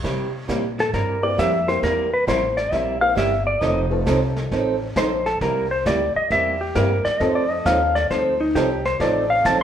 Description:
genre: country, western swing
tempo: 134 BPM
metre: 4/4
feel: swing 67% on 8ths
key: unclear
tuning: A4 = 440 Hz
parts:
  - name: picked old ladder-braced acoustic guitar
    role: accompaniment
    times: 0.0-9.6 s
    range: C3 to A4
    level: -24 LUFS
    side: right 3 dB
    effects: none
  - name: upright bass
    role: bass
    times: 0.0-9.6 s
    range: F1 to C3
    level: -26 LUFS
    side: equal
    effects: none
  - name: vintage brush drum kit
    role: drums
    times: 0.0-9.6 s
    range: brushed snare drum, hi-hat, kick drum, snare drum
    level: -31 LUFS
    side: equal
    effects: none
  - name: clean lap steel guitar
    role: melody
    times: 0.8-9.6 s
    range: Eb4 to A5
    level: -20 LUFS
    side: left 1 dB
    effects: none
  - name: tack piano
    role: accompaniment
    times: 1.2-9.6 s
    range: A3 to Bb4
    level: -28 LUFS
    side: left 2 dB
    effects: none
room: wet large studio reverb, RT60 1.0 s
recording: band playing live in one room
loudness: -18 LUFS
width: side -9 dB against mid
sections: 0.0-9.6 A section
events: electric slide guitar solo 0.0-9.6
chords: 0.0 C7; 3.6 F7; 5.4 C7; 7.2 F7

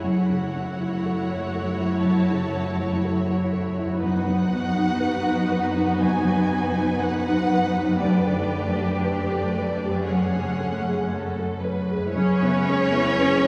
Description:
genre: cinematic, emotional film score for orchestra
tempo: 60 BPM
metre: 4/4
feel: rubato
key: F# dorian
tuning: A4 = 440 Hz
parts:
  - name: dark symphonic violin section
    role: melody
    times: 0.0-13.5 s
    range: C#5 to A5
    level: -34 LUFS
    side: equal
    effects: none
  - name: warm symphonic violin section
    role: second line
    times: 0.0-13.5 s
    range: F#4 to C#5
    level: -32 LUFS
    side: equal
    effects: none
  - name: dark concert grand piano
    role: accompaniment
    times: 0.0-13.5 s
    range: F#2 to C#5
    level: -27 LUFS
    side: equal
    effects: none
  - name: rich symphonic viola section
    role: accompaniment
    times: 0.0-13.5 s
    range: A3 to B4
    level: -33 LUFS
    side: equal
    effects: none
  - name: concert harp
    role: arpeggios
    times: 0.0-13.5 s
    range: F#2 to G#5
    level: -40 LUFS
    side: equal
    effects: none
  - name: warm studio cello section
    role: bass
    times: 0.0-13.5 s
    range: F#2 to C#4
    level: -29 LUFS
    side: equal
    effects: none
  - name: rich symphonic double bass section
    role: bass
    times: 12.1-13.5 s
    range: F#1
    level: -34 LUFS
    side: equal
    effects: none
room: wet church reverb, RT60 3.0 s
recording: recorded in a church or concert hall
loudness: -23 LUFS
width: mono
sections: 0.0-12.2 A section; 12.2-13.5 A section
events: none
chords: 0.0 F#m7; 4.0 B/F#; 8.0 Gadd9/F#; 10.1 F#madd9; 12.2 E6/F#

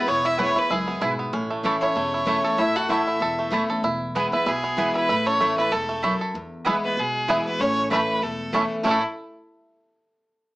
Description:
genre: bluegrass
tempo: 192 BPM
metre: 4/4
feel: swing 54% on 8ths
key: A major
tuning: A4 = 443 Hz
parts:
  - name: clear fiddle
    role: melody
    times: 0.0-9.0 s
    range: E4 to F#5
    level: -25 LUFS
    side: equal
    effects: none
  - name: lap resonator guitar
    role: second line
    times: 0.0-9.0 s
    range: G#3 to A4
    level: -31 LUFS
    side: left 1 dB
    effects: none
  - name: picked steel-string acoustic guitar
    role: accompaniment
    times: 0.0-9.0 s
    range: E2 to E4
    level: -27 LUFS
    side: left 1 dB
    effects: none
  - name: bluegrass banjo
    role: arpeggios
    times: 0.0-9.0 s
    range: A3 to A4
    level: -26 LUFS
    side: right 1 dB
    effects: none
  - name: upright bass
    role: bass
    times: 0.1-9.0 s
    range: E1 to E2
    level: -37 LUFS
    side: equal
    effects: none
  - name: mandolin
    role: stabs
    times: 0.4-9.0 s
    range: A3 to A5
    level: -26 LUFS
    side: right 2 dB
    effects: none
room: moderate studio reverb, RT60 0.6 s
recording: small speaker sound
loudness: -20 LUFS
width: side -19 dB against mid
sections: 0.0-6.3 A section; 6.3-8.9 B section; 8.9-10.1 C section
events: none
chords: 0.0 E; 1.3 A; 3.8 E; 5.1 A; 6.3 E; 7.6 A

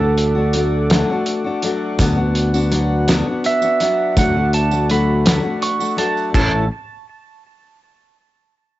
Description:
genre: folk rock and heartland rock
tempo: 55 BPM (dotted quarters)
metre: 6/8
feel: straight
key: unclear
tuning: A4 = 440 Hz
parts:
  - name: pedal steel guitar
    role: second line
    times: 0.0-6.7 s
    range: A4 to C#6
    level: -20 LUFS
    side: right 4 dB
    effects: cassette tape, tape echo
  - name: picked steel-string acoustic guitar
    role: accompaniment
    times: 0.0-6.6 s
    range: A2 to A4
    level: -20 LUFS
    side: left 3 dB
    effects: cassette tape
  - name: tonewheel organ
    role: sustained chords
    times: 0.0-6.7 s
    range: C#4 to D6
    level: -30 LUFS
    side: equal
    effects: slow rotary speaker, cassette tape
  - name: fingered electric bass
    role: bass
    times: 0.0-6.7 s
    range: A1 to D2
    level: -18 LUFS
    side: equal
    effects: none
  - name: loose indie drum kit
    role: drums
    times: 0.2-6.5 s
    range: crash cymbal, hi-hat, kick drum, snare drum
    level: -19 LUFS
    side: equal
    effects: none
  - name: tambourine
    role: percussion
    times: 2.0-6.7 s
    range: none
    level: -33 LUFS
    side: right 8 dB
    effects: none
room: light reverb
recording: home recording on cassette, nothing above 7.8 kHz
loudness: -15 LUFS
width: side -15 dB against mid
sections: 0.0-6.3 A section; 6.3-8.5 B section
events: pedal steel guitar solo 0.0-6.3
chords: 0.0 D; 2.0 Bm/D; 4.2 D; 6.3 A

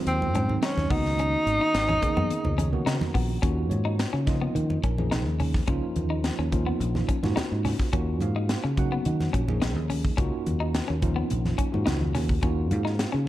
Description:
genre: electric jazz fusion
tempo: 107 BPM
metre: 4/4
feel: straight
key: Eb minor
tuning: A4 = 441 Hz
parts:
  - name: bell-like tine electric piano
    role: accompaniment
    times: 0.0-13.3 s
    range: Eb3 to Bb5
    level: -31 LUFS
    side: right 1 dB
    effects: medium stereo tremolo
  - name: clean electric guitar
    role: stabs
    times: 0.0-13.3 s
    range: Cb4 to Eb4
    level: -34 LUFS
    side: left 5 dB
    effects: lush chorus
  - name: warm tenor saxophone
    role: melody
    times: 0.1-2.9 s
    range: C4 to Eb4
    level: -25 LUFS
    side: equal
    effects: none
  - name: fingered electric bass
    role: bass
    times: 0.1-13.3 s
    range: Ab1 to Eb3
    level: -27 LUFS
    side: equal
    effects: none
  - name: crisp fusion drum kit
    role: drums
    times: 0.1-13.1 s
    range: hi-hat, kick drum, snare drum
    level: -29 LUFS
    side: equal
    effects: none
  - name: congas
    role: percussion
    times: 0.2-12.8 s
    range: none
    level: -32 LUFS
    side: right 1 dB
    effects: none
room: light reverb, studio ambience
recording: dark, warm production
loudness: -23 LUFS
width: side -14 dB against mid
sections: 0.0-3.4 A section; 3.4-13.3 B section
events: tine electric piano fill 2.3-3.4; drum fill 11.7-12.4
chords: 0.0 Ab7; 0.9 Db13sus4; 3.4 Ebm9

